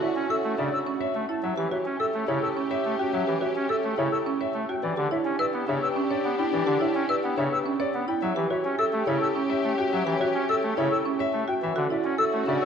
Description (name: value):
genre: classical, minimalist pattern music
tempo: 106 BPM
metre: 3/4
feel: straight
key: unclear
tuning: A4 = 440 Hz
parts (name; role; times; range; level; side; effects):
- warm concert grand piano; melody; 0.0-12.7 s; A4 to A5; -31 LUFS; left 6 dB; none
- mellow clarinet; second line; 0.0-12.7 s; F#4 to G4; -34 LUFS; right 2 dB; none
- rich symphonic violin section; sustained chords; 0.0-12.7 s; C#4 to G4; -32 LUFS; left 5 dB; none
- buzzing marimba with medium hard mallets; arpeggios; 0.0-12.7 s; C#4 to C#5; -28 LUFS; right 5 dB; none
- silver concert flute; arpeggios; 0.0-12.7 s; E5 to E6; -31 LUFS; left 3 dB; none
- chamber organ, soft reed; accompaniment; 0.2-12.6 s; C#3 to C#4; -31 LUFS; equal; none
room: wet scoring stage reverb, RT60 1.7 s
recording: dark, warm production, nothing above 10.5 kHz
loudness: -23 LUFS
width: side -7 dB against mid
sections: 0.0-12.7 A section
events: none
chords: 0.0 Dmaj7; 1.4 A7; 4.8 Em7; 8.2 A7; 11.6 Dmaj7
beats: 0.30 0.87 | 1.43 2.00 2.56 | 3.13 3.70 4.26 | 4.83 5.39 5.96 | 6.53 7.09 7.66 | 8.22 8.79 9.36 | 9.92 10.49 11.05 | 11.62 12.19